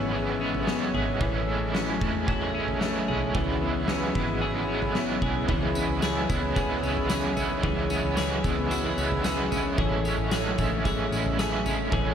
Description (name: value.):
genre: dream pop.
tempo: 112 BPM.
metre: 4/4.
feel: straight.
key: C# minor.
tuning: A4 = 442 Hz.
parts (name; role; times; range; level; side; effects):
crunchy overdriven guitar; accompaniment; 0.0-12.1 s; A2 to E4; -31 LUFS; right 4 dB; tremolo, analog chorus.
pedal harmonium; sustained chords; 0.0-12.1 s; A3 to E5; -32 LUFS; right 2 dB; none.
clean electric guitar; arpeggios; 0.0-12.1 s; E3 to G#4; -30 LUFS; left 5 dB; wide subtle chorus, digital delay.
vintage muted fingered electric bass; bass; 0.0-12.1 s; G#1 to E2; -33 LUFS; equal; none.
drifting glass-harmonics texture; texture; 0.2-12.1 s; E4 to G#5; -41 LUFS; right 2 dB; none.
oversized low-tuned drum kit; drums; 0.5-12.0 s; kick drum, snare drum, tambourine, toms; -30 LUFS; equal; none.
room: light reverb, small room ambience.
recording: none.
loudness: -24 LUFS.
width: side -8 dB against mid.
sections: 0.0-5.5 A section; 5.5-12.1 B section.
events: none.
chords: 0.0 C#m7; 1.2 Amaj7; 3.3 C#m7; 9.8 Amaj7.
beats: 0.14 0.67 | 1.21 1.74 2.28 2.81 | 3.35 3.88 4.42 4.96 | 5.49 6.03 6.56 7.10 | 7.63 8.17 8.71 9.24 | 9.78 10.31 10.85 11.38 | 11.92.